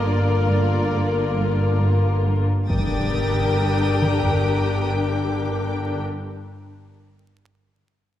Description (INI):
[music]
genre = cinematic, suspense film score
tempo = 68 BPM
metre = 4/4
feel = straight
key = G minor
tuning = A4 = 442 Hz
[part]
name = warm studio violin section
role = melody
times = 0.0-6.0 s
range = D5 to G5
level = -33 LUFS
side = equal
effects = none
[part]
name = warm studio violin section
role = second line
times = 0.0-6.0 s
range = F4 to Bb4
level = -28 LUFS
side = left 2 dB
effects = none
[part]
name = rich studio viola section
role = accompaniment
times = 0.0-6.0 s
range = D3 to D4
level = -29 LUFS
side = equal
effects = none
[part]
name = warm French horn section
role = sustained chords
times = 0.0-6.0 s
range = D4 to Bb4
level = -27 LUFS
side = left 5 dB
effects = none
[part]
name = dark studio cello section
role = riff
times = 0.0-2.5 s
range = G2 to G3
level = -28 LUFS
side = right 1 dB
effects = none
[part]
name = rich studio double bass section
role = bass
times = 0.0-6.0 s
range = G1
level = -24 LUFS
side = equal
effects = none
[part]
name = warm studio cello section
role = bass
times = 0.0-6.0 s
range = G2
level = -26 LUFS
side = equal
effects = none
[part]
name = warm studio violin section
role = texture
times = 0.0-5.7 s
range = D6 to A6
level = -34 LUFS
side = left 1 dB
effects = none
[part]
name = taiko ensemble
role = drums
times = 2.7-4.4 s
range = none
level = -30 LUFS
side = equal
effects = none
[part]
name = timpani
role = percussion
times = 2.7-6.0 s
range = G2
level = -31 LUFS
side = equal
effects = none
[part]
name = impact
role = sound effects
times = 2.7-6.1 s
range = none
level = -29 LUFS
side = equal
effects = none
[sound]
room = wet scoring stage reverb, RT60 1.9 s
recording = vinyl crackle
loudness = -19 LUFS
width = side -12 dB against mid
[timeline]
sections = 0.0-2.7 A section; 2.7-6.2 B section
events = impact 2.7-6.2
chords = 0.0 Bb/G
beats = 0.05 0.93 1.81 | 2.69 3.58 4.46 5.34